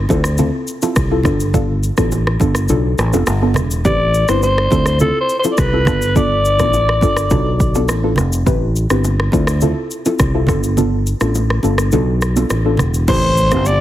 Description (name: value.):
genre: afrobeats.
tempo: 104 BPM.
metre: 4/4.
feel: straight.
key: unclear.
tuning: A4 = 440 Hz.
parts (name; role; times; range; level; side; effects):
fingered electric bass; bass; 0.0-13.8 s; E1 to D2; -16 LUFS; equal; none.
soft round pluck; accompaniment; 0.1-13.7 s; B3 to B4; -20 LUFS; equal; chorus, phaser.
afro-pop drum kit; drums; 0.1-13.8 s; crash cymbal, kick drum, rim click, shaker; -20 LUFS; equal; none.
bongos and congas; percussion; 0.1-13.8 s; none; -23 LUFS; right 2 dB; none.
growling alto saxophone; melody; 3.9-7.9, 13.1-13.8 s; A4 to D5; -16 LUFS; left 1 dB; none.
impact; sound effects; 13.2-13.8 s; none; -25 LUFS; equal; none.
room: light reverb.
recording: heavily compressed radio sound.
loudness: -13 LUFS.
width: side -13 dB against mid.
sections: 0.0-13.1 A section.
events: kick muted 2.7-3.9, 10.8-13.1; impact 13.1-13.8.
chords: 0.1 Dm7; 1.3 G7; 2.7 Bm7b5; 3.9 Am7; 4.7 Dm7; 5.9 G7; 7.3 Bm7b5; 8.5 Am7; 9.3 Dm7; 10.5 G7; 11.9 Bm7b5; 13.1 Am7.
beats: 0.39 0.96 | 1.54 2.12 2.70 3.27 | 3.85 4.43 5.00 5.58 | 6.16 6.73 7.31 7.89 | 8.46 9.04 9.62 10.20 | 10.77 11.35 11.93 12.50 | 13.08 13.66.